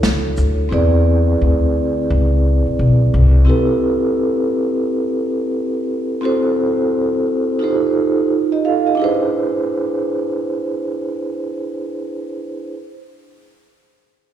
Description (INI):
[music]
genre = hip hop, jazz-hop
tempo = 87 BPM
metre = 4/4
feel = swing 63% on 16ths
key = unclear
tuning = A4 = 439 Hz
[part]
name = vibraphone with soft mallets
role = accompaniment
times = 0.0-12.8 s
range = C4 to F5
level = -17 LUFS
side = right 2 dB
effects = slapback echo
[part]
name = upright bass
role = bass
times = 0.0-3.5 s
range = B1 to E2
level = -14 LUFS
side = left 1 dB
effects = none
[part]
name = open jazz drum kit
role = drums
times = 0.0-0.6 s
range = hi-hat, shaker, snare drum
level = -19 LUFS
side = equal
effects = slapback echo
[sound]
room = light reverb, small room ambience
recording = live gig heard through the venue's PA, recital hall reverb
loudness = -15 LUFS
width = side -10 dB against mid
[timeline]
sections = 0.0-9.0 A section; 9.0-11.8 B section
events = none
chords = 0.0 Bm11 (rootless); 0.7 E7b13; 3.5 Am7; 6.2 F#m7b5; 7.6 F9; 9.0 E7b13